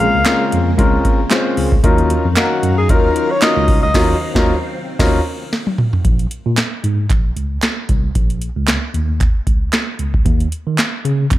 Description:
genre	early-eighties boogie funk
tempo	114 BPM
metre	4/4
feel	swing 56% on 16ths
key	Bb minor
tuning	A4 = 440 Hz
part	breathy alto saxophone	melody	0.0-4.3 s	Gb4 to F5	-18 LUFS	left 2 dB	slapback echo
part	warm concert grand piano	accompaniment	0.0-5.2 s	Gb3 to F5	-18 LUFS	left 2 dB	tube saturation
part	string machine, full ensemble	sustained chords	0.0-6.0 s	Db3 to F5	-24 LUFS	left 1 dB	phaser, ensemble chorus
part	mellow tine electric piano	bass	0.0-11.4 s	Bb1 to Eb3	-18 LUFS	equal	medium stereo tremolo
part	booming analog drum machine	drums	0.3-11.4 s	crash cymbal, handclaps, hi-hat, kick drum, snare drum, toms	-16 LUFS	equal	gated reverb
part	group handclap	percussion	0.3-11.4 s	none	-26 LUFS	right 6 dB	none
room	digital ambience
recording	none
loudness	-13 LUFS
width	side -15 dB against mid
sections	0.0-6.0 A section; 6.0-11.4 B section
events	band accent 3.9-6.0; drum fill 5.5-6.0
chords	0.0 Bbm9; 1.8 Ebm9; 6.0 Bbm; 10.3 Eb7(no3)

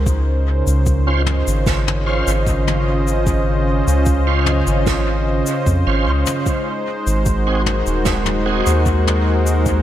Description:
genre	ambient dub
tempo	75 BPM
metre	4/4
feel	straight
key	unclear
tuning	A4 = 440 Hz
part	warm analog pad	sustained chords	0.0-9.8 s	Db3 to Eb5	-20 LUFS	equal	chorus
part	soft dub sub bass	bass	0.0-9.8 s	Eb1 to F2	-18 LUFS	equal	tube saturation
part	electronic kick drum	drums	0.1-9.8 s	none	-21 LUFS	equal	overdrive
part	vintage brush drum kit	drums	0.1-9.8 s	shaker, snare drum, toms	-26 LUFS	left 1 dB	dub echo
part	bright tonewheel organ	stabs	1.1-8.7 s	C4 to C5	-26 LUFS	right 4 dB	overdrive, chorus vibrato, slow rotary speaker, dub echo
room	moderate lush hall reverb, RT60 2.8 s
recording	dreamy mix soaked in reverb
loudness	-15 LUFS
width	side -12 dB against mid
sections	0.0-9.8 A section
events	none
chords	0.1 Dbmaj7; 6.5 Ab7

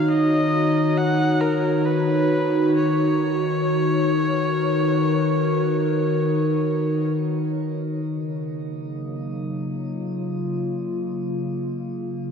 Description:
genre	ambient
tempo	free time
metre	none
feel	none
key	unclear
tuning	A4 = 438 Hz
part	clear electric violin	melody	0.0-7.1 s	Bb4 to Gb5	-28 LUFS	equal	shimmer reverb, diffuse ambient delay
part	warbly tape-like pad	sustained chords	0.0-12.3 s	Db3 to Db5	-20 LUFS	left 1 dB	chorus, built-in reverb, shimmer reverb
room	wet lush hall reverb, RT60 2.7 s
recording	dark, warm production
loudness	-20 LUFS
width	side -6 dB against mid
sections	0.0-8.0 A section; 8.0-12.3 B section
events	none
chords	0.0 Ebm7; 2.7 Cbmaj9/Eb; 8.0 Gbmaj7/Db

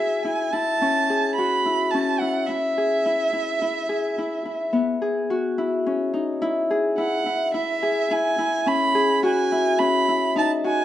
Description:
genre	contemporary instrumental, chamber music in an uneven meter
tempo	107 BPM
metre	7/4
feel	straight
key	unclear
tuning	A4 = 439 Hz
part	rich violin	melody	0.0-10.8 s	E5 to B5	-24 LUFS	right 4 dB	none
part	Celtic harp	arpeggios	0.0-10.8 s	B3 to G#4	-22 LUFS	left 2 dB	none
room	moderate recital hall reverb, RT60 1.3 s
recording	dark, warm production, nothing above 10.8 kHz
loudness	-20 LUFS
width	side -12 dB against mid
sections	0.0-6.4 A section; 6.4-10.8 B section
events	none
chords	0.0 E6; 2.5 Eadd9; 6.4 C#m7

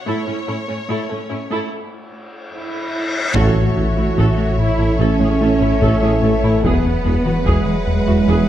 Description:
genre	cinematic, hybrid orchestral and electronic film score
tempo	73 BPM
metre	4/4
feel	straight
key	unclear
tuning	A4 = 440 Hz
part	rich symphonic violin section	melody	0.0-8.5 s	C#5 to F#5	-32 LUFS	left 3 dB	none
part	clear symphonic viola section	accompaniment	0.1-8.5 s	A3 to A4	-27 LUFS	right 1 dB	none
part	glassy wavetable pluck	arpeggios	0.1-8.4 s	E3 to A4	-28 LUFS	left 2 dB	chorus, tape echo
part	dark symphonic cello section	bass	0.1-8.5 s	A2 to F#4	-21 LUFS	right 3 dB	none
part	reverse cymbal and impact	sound effects	2.2-6.6 s	none	-26 LUFS	left 1 dB	none
part	mellow trombone section	sustained chords	3.3-8.5 s	E3 to B3	-25 LUFS	right 3 dB	none
part	warm symphonic violin section	second line	3.4-8.5 s	B4 to C#5	-27 LUFS	left 1 dB	none
part	mellow French horn section	sustained chords	3.4-8.5 s	G#4 to E5	-24 LUFS	left 2 dB	none
part	rubbery square bass	riff	3.4-8.4 s	E2 to A3	-20 LUFS	left 2 dB	none
part	mellow tuba	bass	3.4-8.4 s	E1 to A1	-26 LUFS	right 4 dB	none
part	rich symphonic double bass section	bass	3.4-8.4 s	A1 to E2	-24 LUFS	right 2 dB	none
part	saturated sub bass	bass	3.4-8.5 s	E1 to A1	-23 LUFS	equal	none
part	taiko ensemble	drums	3.4-8.2 s	none	-24 LUFS	equal	none
room	moderate scoring stage reverb, RT60 1.5 s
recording	dark, warm production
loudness	-15 LUFS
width	side -12 dB against mid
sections	0.0-3.4 A section; 3.4-8.5 B section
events	reverse cymbal 2.2-3.4; band accent 3.4-4.2; impact 3.4-6.6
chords	0.1 A; 6.6 Eadd9

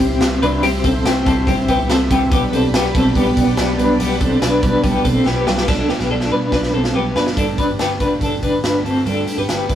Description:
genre	jangly indie pop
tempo	142 BPM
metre	4/4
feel	straight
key	G major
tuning	A4 = 440 Hz
part	fingerpicked steel-string acoustic guitar	accompaniment	0.0-9.8 s	B2 to B4	-22 LUFS	right 3 dB	none
part	string machine, violas	sustained chords	0.0-5.7 s	G4 to C6	-27 LUFS	equal	ensemble chorus
part	twelve-string electric guitar	arpeggios	0.0-9.8 s	B3 to B4	-18 LUFS	left 2 dB	tremolo
part	vintage muted picked electric bass	bass	0.0-9.8 s	F#1 to B2	-24 LUFS	equal	none
part	raw garage drum kit	drums	0.0-9.8 s	crash cymbal, hi-hat, kick drum, snare drum	-21 LUFS	equal	none
room	moderate small room reverb, RT60 0.5 s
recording	rough rehearsal-room recording, warm saturation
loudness	-14 LUFS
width	side -10 dB against mid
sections	0.0-5.7 A section; 5.7-7.4 B section; 7.4-9.8 C section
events	drum fill 5.3-5.7, 5.7-7.4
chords	0.0 C; 2.3 G/B; 5.7 Gadd9

